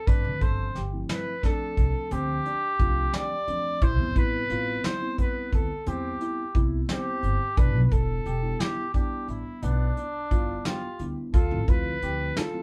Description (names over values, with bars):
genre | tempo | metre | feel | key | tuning
progressive instrumental, band music in an uneven meter | 176 BPM (eighths) | 11/8 | straight | unclear | A4 = 440 Hz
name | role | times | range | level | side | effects
dark trumpet | melody | 0.0-12.6 s | D4 to D5 | -33 LUFS | equal | none
mellow tine electric piano | accompaniment | 0.1-12.6 s | F3 to E4 | -39 LUFS | equal | none
warm concert grand piano | arpeggios | 0.1-12.6 s | B3 to A4 | -39 LUFS | equal | none
upright bass | bass | 0.1-12.3 s | E1 to E2 | -30 LUFS | equal | none
vintage brush drum kit | drums | 0.1-12.5 s | hi-hat, kick drum, snare drum | -27 LUFS | equal | none
room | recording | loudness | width
moderate small room reverb, RT60 0.6 s | band playing live in one room | -26 LUFS | mono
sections
0.0-12.6 A section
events
none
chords
0.1 G7sus4; 3.8 Am7; 7.6 Em7; 11.3 Dm7